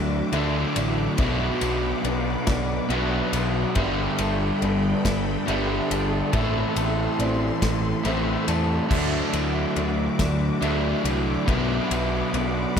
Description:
post-rock; 47 BPM (dotted quarters); 6/8; straight; A4 = 440 Hz
warm studio string section; sustained chords; 0.0-12.8 s; F#4 to D6; -34 LUFS; left 2 dB
electric guitar through a small old amp; arpeggios; 0.0-12.8 s; A2 to A4; -32 LUFS; left 2 dB; analog chorus, diffuse ambient delay
electric guitar through a small old amp; arpeggios; 0.0-12.8 s; D5 to E5; -34 LUFS; right 3 dB; analog chorus, diffuse ambient delay
overdriven electric guitar; riff; 0.0-12.8 s; G2 to D4; -28 LUFS; left 10 dB
overdriven semi-hollow guitar; riff; 0.0-12.8 s; G2 to E4; -27 LUFS; right 7 dB
growling picked electric bass; bass; 0.0-12.8 s; G1 to E2; -28 LUFS; left 1 dB; overdrive
loose indie drum kit; drums; 0.3-12.8 s; crash cymbal, kick drum, ride cymbal, snare drum; -29 LUFS; left 1 dB
moderate church reverb, RT60 3.1 s; dreamy mix soaked in reverb; -21 LUFS; side -7 dB against mid
0.0-12.8 A section
0.0 Dadd9; 1.2 Bm; 3.8 Gadd9; 6.3 Am; 8.9 Dadd9; 11.5 Bm
| 1.19 2.48 | 3.76 5.05 | 6.34 7.62 | 8.91 10.20 | 11.48 12.77

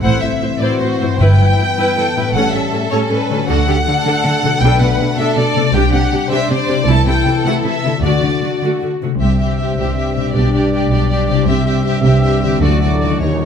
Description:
cinematic; 105 BPM (dotted quarters); 6/8; straight; C lydian; A4 = 441 Hz
warm symphonic violin section; melody; 0.0-13.5 s; B4 to A5; -20 LUFS; left 3 dB
rich studio viola section; accompaniment; 0.0-13.5 s; G3 to C5; -22 LUFS; right 1 dB
mellow French horn section; sustained chords; 0.0-13.5 s; D3 to G4; -22 LUFS; left 4 dB
concert harp; arpeggios; 0.0-13.5 s; G2 to E5; -21 LUFS; left 12 dB
rich symphonic cello section; bass; 0.0-13.5 s; C2 to Eb3; -21 LUFS; right 2 dB
rich symphonic double bass section; bass; 0.0-13.5 s; G1 to Eb2; -17 LUFS; right 2 dB
warm symphonic violin section; second line; 0.6-13.5 s; Eb4 to C5; -23 LUFS; left 1 dB
timpani; percussion; 1.2-1.7 s; G2; -18 LUFS; left 2 dB
clear trombone section; sustained chords; 9.2-13.5 s; G2 to G3; -23 LUFS; right 5 dB
warm trumpet; stabs; 9.2-13.5 s; Db5 to E5; -25 LUFS; right 2 dB
moderate scoring stage reverb, RT60 1.6 s; -12 LUFS; side -7 dB against mid
0.0-9.2 A section; 9.2-13.5 B section
0.0 Am; 1.2 Em/G; 2.3 A7; 3.5 D; 4.6 Bm7; 5.7 Csus2; 6.9 Am/C; 8.0 D; 9.2 C; 10.4 G/B; 11.5 C; 12.6 D
| 0.04 0.61 | 1.20 1.77 | 2.34 2.91 | 3.49 4.06 | 4.62 5.18 | 5.75 6.31 | 6.88 7.46 | 8.04 8.63 | 9.21 9.79 | 10.36 10.92 | 11.48 12.05 | 12.63 13.21

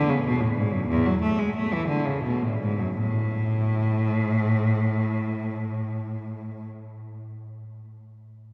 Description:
classical, baroque-style suite movement for unaccompanied cello; 52-65 BPM (dotted quarters); 12/8; rubato; A4 = 441 Hz
rich cello; solo; 0.0-6.7 s; E2 to A3; -26 LUFS; equal
wet cathedral reverb, RT60 4.7 s; heard from further back in the room; -25 LUFS; mono
0.0-3.0 A section; 3.0-7.2 B section
slowing down 0.0-3.0
0.89 1.88 | 2.98 4.02 5.08 6.14

